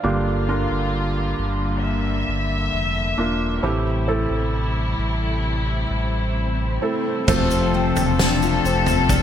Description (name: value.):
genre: pop ballad.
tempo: 66 BPM.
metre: 4/4.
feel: straight.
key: F major.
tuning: A4 = 439 Hz.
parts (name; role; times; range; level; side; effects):
felt-muted upright piano; accompaniment; 0.0-9.2 s; G2 to F5; -24 LUFS; right 2 dB; none.
warm studio string section; sustained chords; 0.0-9.2 s; C3 to E5; -25 LUFS; left 2 dB; none.
sub bass with octave; bass; 0.0-9.2 s; E1 to A1; -24 LUFS; equal; none.
dark French horn section; second line; 7.3-9.2 s; C4 to D4; -26 LUFS; left 6 dB; digital delay.
picked steel-string acoustic guitar; arpeggios; 7.3-9.2 s; F3 to C5; -24 LUFS; left 8 dB; analog chorus, digital delay.
natural country drum kit; drums; 7.3-9.2 s; crash cymbal, kick drum, snare drum, toms; -22 LUFS; equal; none.
egg shaker; percussion; 7.3-9.2 s; none; -34 LUFS; right 3 dB; none.
room: moderate lush hall reverb, RT60 2.6 s.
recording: bright 1980s-style digital production.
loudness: -19 LUFS.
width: side -9 dB against mid.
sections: 0.0-7.3 A section; 7.3-9.2 B section.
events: none.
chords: 0.0 Gm7; 3.6 Am7; 7.3 F.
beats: | 0.04 0.93 1.83 2.73 | 3.63 4.53 5.45 6.37 | 7.29 8.20 9.10.